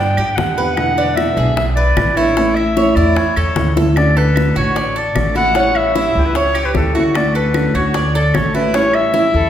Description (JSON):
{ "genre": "latin, Cuban son and guajira", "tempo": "151 BPM", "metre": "4/4", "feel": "straight", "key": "D major", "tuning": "A4 = 442 Hz", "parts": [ { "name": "bright clarinet", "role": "melody", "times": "0.0-9.5 s", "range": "B4 to G5", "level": "-18 LUFS", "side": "left 2 dB", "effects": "none" }, { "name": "Cuban tres", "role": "arpeggios", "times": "0.0-9.5 s", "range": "C#4 to D5", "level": "-21 LUFS", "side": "right 4 dB", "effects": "none" }, { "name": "upright bass", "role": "bass", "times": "0.0-9.5 s", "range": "A1 to G2", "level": "-18 LUFS", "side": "equal", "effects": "none" }, { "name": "bongos", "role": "percussion", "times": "0.2-9.3 s", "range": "none", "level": "-23 LUFS", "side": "left 3 dB", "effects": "none" }, { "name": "claves", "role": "percussion", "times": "0.2-9.1 s", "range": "none", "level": "-31 LUFS", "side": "right 3 dB", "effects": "none" }, { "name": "nylon-string guitar", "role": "accompaniment", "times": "0.4-9.5 s", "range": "B2 to G4", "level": "-19 LUFS", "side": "equal", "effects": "none" }, { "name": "breathy bright jazz flute", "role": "second line", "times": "6.2-9.5 s", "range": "G4 to C#5", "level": "-22 LUFS", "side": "left 2 dB", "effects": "none" } ], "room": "wet scoring stage reverb, RT60 1.7 s", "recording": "recorded in a church or concert hall", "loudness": "-12 LUFS", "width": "side -10 dB against mid", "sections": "0.0-4.0 A section; 4.0-9.5 B section", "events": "drum fill 3.8", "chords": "0.0 G; 0.8 E7; 2.4 A; 4.0 Dmaj7; 5.6 A7; 7.1 Dmaj7; 8.7 A7" }